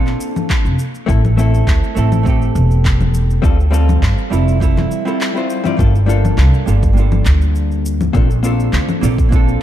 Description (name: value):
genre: sunset chillout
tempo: 102 BPM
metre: 4/4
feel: straight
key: G dorian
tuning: A4 = 440 Hz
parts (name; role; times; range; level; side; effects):
- vintage hollow-body jazz guitar; accompaniment; 0.0-9.6 s; G3 to D5; -19 LUFS; moving between left 6 dB and right 5 dB; auto-pan, ping-pong delay
- upright bass; bass; 0.0-9.5 s; E1 to G2; -14 LUFS; equal; none
- electronic handclaps, shaker and congas; drums; 0.1-9.6 s; none; -23 LUFS; left 4 dB; small room ambience
- electronic kick drum; drums; 0.5-9.4 s; none; -15 LUFS; equal; small room ambience
room: little or no reverb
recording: dark, warm production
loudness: -12 LUFS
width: side -12 dB against mid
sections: 0.0-5.8 A section; 5.8-9.6 B section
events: none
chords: 0.0 Bbmaj7; 0.8 Am7; 3.4 Dm11; 5.8 Gm9; 8.1 Bbmaj7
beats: 0.50 | 1.09 1.68 2.27 2.85 | 3.44 4.03 4.62 5.21 | 5.79 6.38 6.97 7.56 | 8.15 8.74 9.32